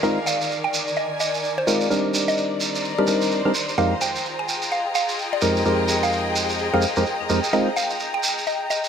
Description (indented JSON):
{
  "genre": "UK garage, two-step garage",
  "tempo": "128 BPM",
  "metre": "4/4",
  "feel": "swing 61% on 16ths",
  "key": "F dorian",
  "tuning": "A4 = 441 Hz",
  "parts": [
    { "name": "mallet-like synth pluck", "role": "melody", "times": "0.0-8.9 s", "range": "G4 to Ab5", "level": "-27 LUFS", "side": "equal", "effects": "chorus, phaser, dub echo" },
    { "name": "warm analog pad", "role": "sustained chords", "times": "0.0-8.9 s", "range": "D5 to G5", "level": "-30 LUFS", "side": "equal", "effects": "chorus" },
    { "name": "percussive organ stab", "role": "stabs", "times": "0.0-7.7 s", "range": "F2 to Bb4", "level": "-22 LUFS", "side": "equal", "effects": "lush chorus, digital delay" },
    { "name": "shekere", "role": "percussion", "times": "0.0-8.9 s", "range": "none", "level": "-27 LUFS", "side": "right 3 dB", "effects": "none" },
    { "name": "rich studio string section", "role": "texture", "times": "0.0-8.9 s", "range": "Eb3 to Bb5", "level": "-28 LUFS", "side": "left 2 dB", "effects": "none" },
    { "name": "claves", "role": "drums", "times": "1.2-8.8 s", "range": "none", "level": "-38 LUFS", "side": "left 8 dB", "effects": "none" }
  ],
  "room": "moderate plate reverb, RT60 2.0 s",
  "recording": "none",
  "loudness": "-20 LUFS",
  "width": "side -7 dB against mid",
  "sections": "0.0-8.9 A section",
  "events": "filter sweep on synth stab 0.0-8.9",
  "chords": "0.0 Bb7sus4; 1.9 Cm9; 3.8 Fm11; 7.5 Bb7sus4"
}